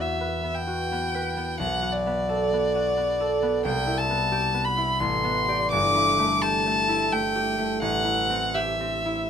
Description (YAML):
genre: classical, impressionist duo for violin and harp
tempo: 86 BPM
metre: 3/4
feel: rubato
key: unclear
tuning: A4 = 439 Hz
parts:
  - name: clear violin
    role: melody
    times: 0.0-9.3 s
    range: D5 to D6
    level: -24 LUFS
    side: left 2 dB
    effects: none
  - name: concert harp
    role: accompaniment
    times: 0.0-9.3 s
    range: G1 to D5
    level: -26 LUFS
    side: right 1 dB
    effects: none
room: light reverb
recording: minimal, uncompressed stereo recording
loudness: -22 LUFS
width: side -8 dB against mid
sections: 0.0-9.3 A section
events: none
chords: 0.0 Emadd9; 1.6 Bm7; 3.7 Cmaj7; 5.0 Am11; 5.7 G69; 7.8 Am9